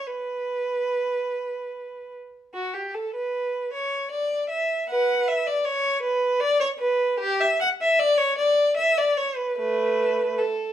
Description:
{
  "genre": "classical, baroque-style suite movement for unaccompanied violin",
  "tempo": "72-80 BPM",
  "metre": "3/4",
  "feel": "rubato",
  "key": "unclear",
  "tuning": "A4 = 440 Hz",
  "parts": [
    { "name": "rich violin", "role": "solo", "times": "0.0-10.7 s", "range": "A3 to F#5", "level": "-22 LUFS", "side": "equal", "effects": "none" }
  ],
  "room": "light reverb",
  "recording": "none",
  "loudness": "-22 LUFS",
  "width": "side -10 dB against mid",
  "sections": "0.0-2.5 A section; 2.5-10.7 A section",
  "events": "none",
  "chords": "none"
}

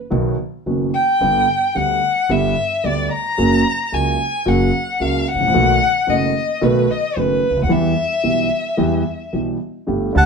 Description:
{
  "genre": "tango",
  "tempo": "111 BPM",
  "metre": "4/4",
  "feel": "rubato",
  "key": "E minor",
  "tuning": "A4 = 440 Hz",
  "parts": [
    { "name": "dark grand piano", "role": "accompaniment", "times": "0.1-10.3 s", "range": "F#1 to G4", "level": "-20 LUFS", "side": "right 1 dB", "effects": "none" },
    { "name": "upright bass", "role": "bass", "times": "0.1-10.3 s", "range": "F#1 to E2", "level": "-22 LUFS", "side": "right 2 dB", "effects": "none" },
    { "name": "rich violin", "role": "second line", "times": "0.9-9.3 s", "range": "B4 to A#5", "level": "-18 LUFS", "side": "left 2 dB", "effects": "none" },
    { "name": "bandoneon", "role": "melody", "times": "10.2-10.3 s", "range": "F#5 to A5", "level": "-13 LUFS", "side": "equal", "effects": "none" }
  ],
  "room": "moderate studio reverb, RT60 0.8 s",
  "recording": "band playing live in one room",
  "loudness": "-15 LUFS",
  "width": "side -5 dB against mid",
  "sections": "0.0-9.9 A section",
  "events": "violin solo 0.0-9.9",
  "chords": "0.0 B; 1.2 G; 3.4 F#; 5.5 B7; 7.7 Em"
}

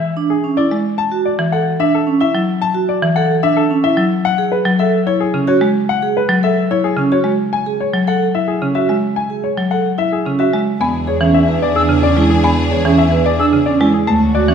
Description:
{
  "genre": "classical, minimalist pattern music",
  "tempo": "110 BPM",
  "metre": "3/4",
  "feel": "straight",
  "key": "unclear",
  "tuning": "A4 = 440 Hz",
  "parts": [
    { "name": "clear baby grand piano", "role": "melody", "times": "0.0-14.5 s", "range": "G#4 to A5", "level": "-19 LUFS", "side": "left 8 dB", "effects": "none" },
    { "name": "vibraphone with medium hard mallets", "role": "arpeggios", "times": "0.2-14.5 s", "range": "C#4 to B4", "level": "-17 LUFS", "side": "right 5 dB", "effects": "none" },
    { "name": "buzzing marimba with hard mallets", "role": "accompaniment", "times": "0.7-14.5 s", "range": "C#3 to B3", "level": "-18 LUFS", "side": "left 1 dB", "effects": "none" },
    { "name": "clear studio string section", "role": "sustained chords", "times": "10.8-14.5 s", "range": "C#4 to G#4", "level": "-22 LUFS", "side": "left 2 dB", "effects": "none" },
    { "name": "rich studio double bass section", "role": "bass", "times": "10.8-14.5 s", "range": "D2 to E2", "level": "-18 LUFS", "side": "right 3 dB", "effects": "none" },
    { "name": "silver concert flute", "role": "arpeggios", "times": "11.8-13.5 s", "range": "E6", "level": "-22 LUFS", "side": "left 2 dB", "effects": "none" }
  ],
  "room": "moderate scoring stage reverb, RT60 1.9 s",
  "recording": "none",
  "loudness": "-13 LUFS",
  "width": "side -7 dB against mid",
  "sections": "0.0-10.8 A section; 10.8-14.5 A section",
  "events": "none",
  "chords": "0.0 E7; 1.0 Dmaj7; 4.3 Amaj7; 10.8 E7"
}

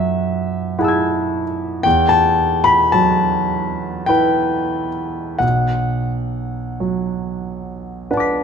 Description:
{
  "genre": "classical, impressionist solo piano",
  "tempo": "43-56 BPM",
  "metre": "3/4",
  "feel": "rubato",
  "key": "E minor",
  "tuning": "A4 = 435 Hz",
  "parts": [
    { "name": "clear grand piano", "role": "solo", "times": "0.0-8.4 s", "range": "B1 to B6", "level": "-16 LUFS", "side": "equal", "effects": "none" }
  ],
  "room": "moderate recital hall reverb, RT60 1.8 s",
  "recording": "none",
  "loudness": "-16 LUFS",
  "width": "side -6 dB against mid",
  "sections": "0.0-8.4 A section",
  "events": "none",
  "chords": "0.0 F#m9; 1.9 Emadd9; 5.4 Bm"
}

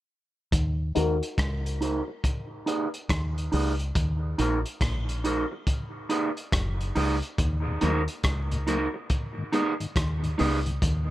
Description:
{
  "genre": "dub reggae",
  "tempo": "70 BPM",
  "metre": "4/4",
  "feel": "swing 64% on 16ths",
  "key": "Eb minor",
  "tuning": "A4 = 437 Hz",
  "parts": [
    { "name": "deep dub fingered electric bass", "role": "bass", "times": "0.5-11.1 s", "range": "Gb1 to Eb2", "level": "-27 LUFS", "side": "equal", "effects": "none" },
    { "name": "crunchy breakbeat drum kit", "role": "drums", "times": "0.5-11.1 s", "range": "hi-hat, kick drum, rim click", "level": "-29 LUFS", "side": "equal", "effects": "none" },
    { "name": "dark baby grand piano", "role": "stabs", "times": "0.9-1.2 s", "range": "Eb4 to Bb4", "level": "-33 LUFS", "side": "left 6 dB", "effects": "low-pass filter, dub echo" },
    { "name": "electric guitar at the edge of break-up", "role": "accompaniment", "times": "1.0-10.6 s", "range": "Eb4 to Cb5", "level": "-29 LUFS", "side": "right 2 dB", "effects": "warbly pitch drift, low-pass filter, dub echo" },
    { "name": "mellow tonewheel organ", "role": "accompaniment", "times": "7.7-11.1 s", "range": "Eb2 to Eb4", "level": "-34 LUFS", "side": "left 3 dB", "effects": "chorus vibrato, low-pass filter, dub echo" }
  ],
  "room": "small room ambience",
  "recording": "none",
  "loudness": "-25 LUFS",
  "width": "side -15 dB against mid",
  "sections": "0.5-11.1 A section",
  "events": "filter sweep 0.5-11.1",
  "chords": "0.5 Ebm; 2.2 Abm; 4.0 Ebm; 5.7 Abm; 7.4 Ebm; 9.1 Abm"
}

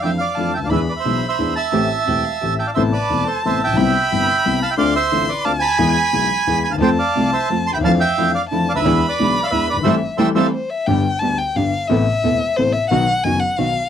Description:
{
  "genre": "tango",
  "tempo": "177 BPM",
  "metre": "3/4",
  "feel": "rubato",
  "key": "A minor",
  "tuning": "A4 = 438 Hz",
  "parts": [
    { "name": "bandoneon", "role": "melody", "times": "0.0-10.5 s", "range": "A4 to C6", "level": "-19 LUFS", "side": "right 5 dB", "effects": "none" },
    { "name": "warm violin", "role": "second line", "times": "0.0-13.9 s", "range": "C5 to C6", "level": "-23 LUFS", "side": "left 2 dB", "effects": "none" },
    { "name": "warm concert grand piano", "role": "accompaniment", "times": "0.0-13.7 s", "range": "E1 to A4", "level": "-20 LUFS", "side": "left 4 dB", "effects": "none" },
    { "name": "dark studio string section", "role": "stabs", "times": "0.0-2.6, 6.8-13.7 s", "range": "F3 to A4", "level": "-23 LUFS", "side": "right 6 dB", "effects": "none" }
  ],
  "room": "light reverb",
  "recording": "dry, close 1970s-style studio recording",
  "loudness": "-15 LUFS",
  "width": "side -9 dB against mid",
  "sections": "0.0-2.8 A section; 2.8-10.9 A section; 10.9-13.9 B section",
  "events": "band accent 9.9-10.9; violin solo 10.9-13.9",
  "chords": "0.0 Dmadd9/F; 0.7 E7; 1.7 Am7; 2.8 Amadd9; 3.8 Cmaj7; 4.8 Dm7; 5.8 E; 6.8 F; 7.8 Dmadd9/F; 8.8 E7; 9.9 Am7; 10.9 G; 11.9 Amadd9; 12.9 B"
}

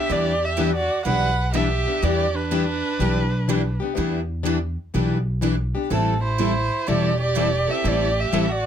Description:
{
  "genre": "acoustic string swing (jazz manouche)",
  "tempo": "124 BPM",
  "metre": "4/4",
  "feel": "swing 66% on 8ths",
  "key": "E minor",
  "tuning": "A4 = 440 Hz",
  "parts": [
    { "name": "dark erhu", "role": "melody", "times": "0.0-8.7 s", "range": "A4 to F#5", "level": "-25 LUFS", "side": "right 1 dB", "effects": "plate reverb" },
    { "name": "warm violin", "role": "second line", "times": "0.0-8.7 s", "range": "C4 to B4", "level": "-28 LUFS", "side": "right 6 dB", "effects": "none" },
    { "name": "picked plugged-in steel-string acoustic guitar", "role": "accompaniment", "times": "0.0-8.5 s", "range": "E3 to A4", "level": "-24 LUFS", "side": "left 5 dB", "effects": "none" },
    { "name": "picked steel-string acoustic guitar", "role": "accompaniment", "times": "0.1-8.5 s", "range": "E3 to B4", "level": "-29 LUFS", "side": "right 8 dB", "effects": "none" },
    { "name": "upright bass", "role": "bass", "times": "0.1-8.7 s", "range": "E1 to E2", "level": "-24 LUFS", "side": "equal", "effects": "none" }
  ],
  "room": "light reverb",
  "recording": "close, detailed microphones",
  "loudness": "-20 LUFS",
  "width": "side -9 dB against mid",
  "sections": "0.0-8.7 A section",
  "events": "none",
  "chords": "0.0 Em7; 5.9 Am7"
}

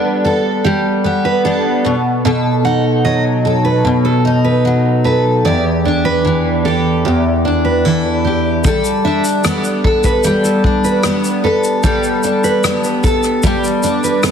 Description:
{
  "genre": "acoustic pop",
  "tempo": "75 BPM",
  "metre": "4/4",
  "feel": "straight",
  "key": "G major",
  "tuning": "A4 = 439 Hz",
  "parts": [
    { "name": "picked steel-string acoustic guitar", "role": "accompaniment", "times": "0.0-14.3 s", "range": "E2 to A4", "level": "-13 LUFS", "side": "equal", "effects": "double-tracked left and right" },
    { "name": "picked steel-string acoustic guitar", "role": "arpeggios", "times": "0.2-14.3 s", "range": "G4 to F#5", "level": "-20 LUFS", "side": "right 4 dB", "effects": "analog delay" },
    { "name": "soft brush drum kit", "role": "drums", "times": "8.6-14.3 s", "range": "kick drum, rim click, shaker", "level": "-18 LUFS", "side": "left 1 dB", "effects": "none" }
  ],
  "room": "moderate echo chamber reverb, RT60 2.2 s",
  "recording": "heavily compressed radio sound",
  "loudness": "-12 LUFS",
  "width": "side -7 dB against mid",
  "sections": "0.0-14.3 A section",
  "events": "none",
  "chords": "0.0 Gadd9; 1.8 B7; 5.4 Em7; 8.6 Gadd9"
}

